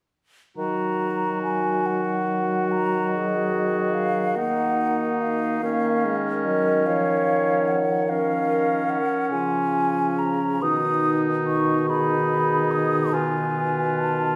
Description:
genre	classical, slow romantic movement for wind quintet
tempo	48 BPM (dotted quarters)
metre	12/8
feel	rubato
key	Eb minor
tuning	A4 = 440 Hz
part	mellow hollow concert flute	melody	0.6-14.4 s	Eb5 to Eb6	-28 LUFS	equal	none
part	warm oboe	second line	0.6-14.4 s	Db4 to Gb4	-30 LUFS	equal	none
part	mellow French horn	accompaniment	0.6-14.4 s	Eb3 to Bb3	-31 LUFS	equal	none
part	mellow bassoon	bass	0.6-14.4 s	Cb3 to Eb3	-29 LUFS	equal	none
part	warm clarinet	accompaniment	3.1-14.4 s	Eb4 to Db5	-30 LUFS	equal	none
room	wet scoring stage reverb, RT60 1.8 s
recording	heard from further back in the room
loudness	-23 LUFS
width	mono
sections	0.6-14.4 A section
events	none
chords	0.6 Ebm; 5.6 Bbm/Eb; 10.6 Abm/Cb; 13.1 B7#11

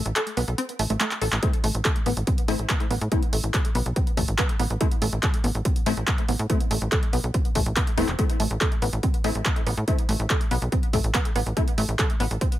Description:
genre	driving peak-time techno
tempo	142 BPM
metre	4/4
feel	straight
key	A minor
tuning	A4 = 435 Hz
part	tight sequencer bass	bass	0.0-12.4 s	E1 to A2	-26 LUFS	equal	sidechain pumping
part	punchy analog drum machine	drums	0.1-12.6 s	handclaps, hi-hat	-28 LUFS	equal	overdrive, studio ambience
part	tight sequenced synth	riff	0.2-12.4 s	A3 to A4	-30 LUFS	right 1 dB	chorus, sidechain pumping, digital delay
part	rave stab	stabs	1.4-11.6 s	A3 to E4	-31 LUFS	left 4 dB	chorus, built-in reverb, sidechain pumping, digital delay
part	electronic kick drum	drums	1.4-12.5 s	none	-24 LUFS	equal	studio ambience
room	little or no reverb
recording	none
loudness	-21 LUFS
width	side -14 dB against mid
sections	0.0-12.6 A section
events	break 0.0-1.4; drum fill 1.1-1.4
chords	0.0 Am

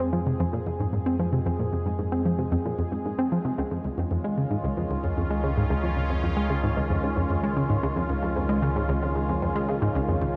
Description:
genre	ambient, sequencer-driven space music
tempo	113 BPM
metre	4/4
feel	straight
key	unclear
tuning	A4 = 440 Hz
part	sweeping resonant pad	sustained chords	0.0-10.4 s	Eb3 to Ab4	-33 LUFS	equal	chorus
part	tight sequenced synth	riff	0.0-10.3 s	Db2 to C4	-28 LUFS	equal	chorus, delay
part	analog drone	bass	0.0-10.4 s	Db2 to F2	-34 LUFS	equal	chorus
room	moderate plate reverb, RT60 3.2 s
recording	echo-heavy mix, cassette tape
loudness	-26 LUFS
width	mono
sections	0.0-10.4 A section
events	fade-in on analog synth pad 0.0-10.4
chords	0.0 Fm; 3.6 Dbadd9

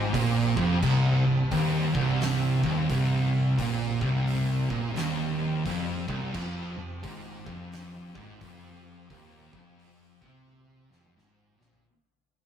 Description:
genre	stoner and doom metal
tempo	87 BPM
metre	4/4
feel	swing 62% on 8ths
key	unclear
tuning	A4 = 440 Hz
part	tonewheel organ	sustained chords	0.0-11.8 s	C3 to G4	-42 LUFS	equal	slow rotary speaker, chorus vibrato
part	overdriven electric guitar	riff	0.0-11.8 s	C2 to C3	-32 LUFS	equal	none
part	thick fuzz guitar	riff	0.0-11.8 s	C2 to C3	-30 LUFS	left 4 dB	distortion
part	thick fuzz guitar	riff	0.0-11.9 s	C2 to C3	-28 LUFS	right 5 dB	distortion
part	hollow-body short-scale picked electric bass	bass	0.0-11.8 s	C1 to C2	-40 LUFS	left 1 dB	tube saturation
part	oversized low-tuned drum kit	drums	0.1-11.8 s	crash cymbal, hi-hat, kick drum, snare drum, toms	-36 LUFS	equal	none
room	moderate stone room reverb, RT60 1.1 s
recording	rough rehearsal-room recording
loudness	-24 LUFS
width	side -9 dB against mid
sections	0.0-11.9 A section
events	fade-out 0.0-11.9; drum fill 10.5-11.9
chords	0.0 F5; 0.8 Cm; 6.3 F5

